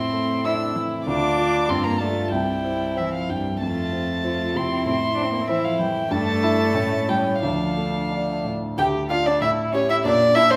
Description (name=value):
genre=quick classical-period movement for piano quartet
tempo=95 BPM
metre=2/4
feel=rubato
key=D minor from 6.1 s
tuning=A4 = 440 Hz
part: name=warm violin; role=melody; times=0.0-10.6 s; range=C5 to E6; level=-26 LUFS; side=equal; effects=none
part: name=dark cello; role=second line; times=0.0-10.6 s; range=E3 to G4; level=-29 LUFS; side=equal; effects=none
part: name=dark violin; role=second line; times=0.0-10.6 s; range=C4 to G4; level=-31 LUFS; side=equal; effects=none
part: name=warm grand piano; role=accompaniment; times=0.0-10.6 s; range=C2 to E5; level=-27 LUFS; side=equal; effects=none
room=wet recital hall reverb, RT60 1.4 s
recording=none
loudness=-22 LUFS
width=mono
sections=0.0-8.8 A section; 8.8-10.6 B section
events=none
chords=0.0 Am; 1.1 Dm; 1.7 G5; 2.3 C; 3.6 F; 4.9 Am; 6.1 A7sus4/G; 6.8 A7; 7.4 Dm; 8.8 N.C.; 9.4 A7; 10.0 Bb